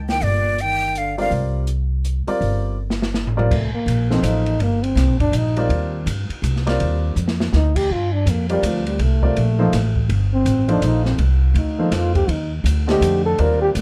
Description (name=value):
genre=modal jazz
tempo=164 BPM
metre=3/4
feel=swing 63% on 8ths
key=C dorian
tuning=A4 = 440 Hz
part: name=upright bass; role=bass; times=0.0-13.8 s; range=G1 to G2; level=-22 LUFS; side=equal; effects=none
part: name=breathy jazz flute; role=melody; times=0.1-1.3 s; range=D5 to G5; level=-23 LUFS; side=equal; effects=plate reverb
part: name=breathy trombone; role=second line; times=0.1-1.3, 3.5-13.7 s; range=Bb2 to Bb4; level=-24 LUFS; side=equal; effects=none
part: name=open jazz drum kit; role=drums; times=0.1-13.8 s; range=crash cymbal, hi-hat, kick drum, ride cymbal, snare drum, toms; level=-28 LUFS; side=equal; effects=none
part: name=dark baby grand piano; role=accompaniment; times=1.2-13.8 s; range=D3 to Eb5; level=-25 LUFS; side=equal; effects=none
room=little or no reverb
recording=dark, warm production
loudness=-19 LUFS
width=mono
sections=0.0-3.5 A section; 3.5-13.8 B section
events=drum fill 2.8-3.5, 7.2-7.5; trombone solo 3.5-13.8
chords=0.0 C9sus4; 3.5 Cm11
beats=| 0.22 0.59 0.95 | 1.32 1.68 2.05 | 2.41 2.78 3.15 | 3.51 3.88 4.24 | 4.61 4.97 5.34 | 5.70 6.07 6.43 | 6.80 7.17 7.53 | 7.90 8.26 8.63 | 8.99 9.36 9.73 | 10.09 10.46 10.82 | 11.19 11.56 11.92 | 12.29 12.65 13.02 | 13.39 13.75